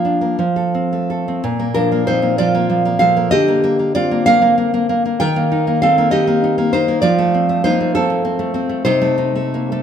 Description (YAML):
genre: romantic piece for solo classical guitar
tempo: 65 BPM (dotted quarters)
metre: 6/8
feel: uneven beats, rubato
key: Bb major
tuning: A4 = 441 Hz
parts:
  - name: nylon-string guitar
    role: solo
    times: 0.0-9.8 s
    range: Bb2 to G5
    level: -14 LUFS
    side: equal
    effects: none
room: moderate recital hall reverb, RT60 1.4 s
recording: minimal, uncompressed stereo recording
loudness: -14 LUFS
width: side -8 dB against mid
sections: 0.0-1.4 A section; 1.4-9.8 B section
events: none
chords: 0.4 F; 1.4 Bb; 3.3 Bb/D; 5.2 Eb; 7.0 F; 8.9 Adim/C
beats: 0.40 | 1.43 2.38 | 3.31 4.27 | 5.21 6.13 | 7.03 7.95 | 8.86